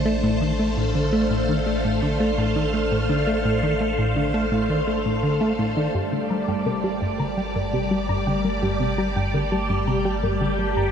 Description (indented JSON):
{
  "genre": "ambient, sequencer-driven space music",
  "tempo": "84 BPM",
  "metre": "4/4",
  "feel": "straight",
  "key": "G minor",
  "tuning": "A4 = 440 Hz",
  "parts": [
    { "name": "phased string machine", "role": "sustained chords", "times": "0.0-10.9 s", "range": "G3 to F5", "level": "-25 LUFS", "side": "equal", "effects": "ensemble chorus, phaser, shimmer reverb" },
    { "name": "plucky analog bass", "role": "riff", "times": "0.0-10.9 s", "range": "G2 to A3", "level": "-24 LUFS", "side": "equal", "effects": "tape echo" },
    { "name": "warm sub bass", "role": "bass", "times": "0.0-10.9 s", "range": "G1 to A1", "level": "-30 LUFS", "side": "equal", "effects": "none" },
    { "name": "pulsing gated texture", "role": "texture", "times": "0.0-10.9 s", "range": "A3 to A5", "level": "-32 LUFS", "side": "left 1 dB", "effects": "chorus, built-in reverb, shimmer reverb" },
    { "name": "soft round pluck", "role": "arpeggios", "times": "5.9-10.9 s", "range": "G4 to Bb5", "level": "-32 LUFS", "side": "moving between left 5 dB and right 2 dB", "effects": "chorus, auto-pan, tape echo, shimmer reverb" }
  ],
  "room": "wet huge ambient reverb, RT60 8.0 s",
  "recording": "dark, warm production",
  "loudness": "-20 LUFS",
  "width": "side -8 dB against mid",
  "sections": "0.0-5.9 A section; 5.9-10.9 A section",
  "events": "filter sweep on analog synth bass 5.9-10.9",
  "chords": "0.0 Adim; 5.9 Gm"
}